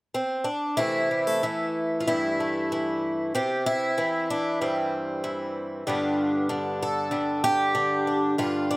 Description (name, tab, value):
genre	folk, solo fingerstyle acoustic guitar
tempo	95 BPM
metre	4/4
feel	rubato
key	C major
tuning	A4 = 440 Hz
part	picked twelve-string acoustic guitar	solo	0.1-8.8 s	G2 to A4	-23 LUFS	equal	none
room	light reverb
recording	recorded outdoors, with no room sound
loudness	-23 LUFS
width	side -22 dB against mid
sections	0.8-8.8 A section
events	none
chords	0.0 N.C.; 0.8 C6; 5.9 G7